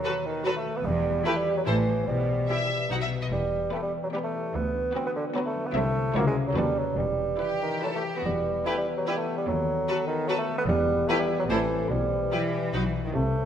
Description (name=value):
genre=cinematic, playful, whimsical film cue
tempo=147 BPM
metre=3/4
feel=straight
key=E minor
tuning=A4 = 445 Hz
part: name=rich studio violin section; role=second line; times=0.0-12.8 s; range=E4 to A4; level=-36 LUFS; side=left 2 dB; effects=none
part: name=warm bassoon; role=accompaniment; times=0.0-13.5 s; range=D3 to C4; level=-28 LUFS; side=right 2 dB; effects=none
part: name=warm studio viola section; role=accompaniment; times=0.0-12.8 s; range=B3 to F#4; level=-35 LUFS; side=right 1 dB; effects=none
part: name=concert harp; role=arpeggios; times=0.0-13.5 s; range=A2 to E5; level=-32 LUFS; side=left 7 dB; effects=none
part: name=clear chamber violin section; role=melody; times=0.1-12.8 s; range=B4 to F#5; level=-35 LUFS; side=left 3 dB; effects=none
part: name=rich symphonic cello section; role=bass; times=0.8-13.5 s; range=C2 to F#3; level=-32 LUFS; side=right 1 dB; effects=none
part: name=clear studio double bass section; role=bass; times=0.9-13.5 s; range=E1 to D#2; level=-33 LUFS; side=right 2 dB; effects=none
part: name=mellow French horn section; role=sustained chords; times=8.3-13.5 s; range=B3 to B4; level=-33 LUFS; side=left 3 dB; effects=none
room=moderate scoring stage reverb, RT60 1.6 s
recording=none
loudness=-24 LUFS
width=side -9 dB against mid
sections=0.0-8.3 A section; 8.3-13.5 A section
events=none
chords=0.0 B7/D#; 0.9 Em; 1.7 Am; 2.1 Em/B; 2.9 B; 3.3 Em; 4.5 Bm/D; 5.8 Am/C; 6.2 F#5/C#; 6.6 B7/D#; 7.0 Em; 9.5 B7/D#; 10.7 Em; 11.5 Am; 11.9 Em/B; 12.7 B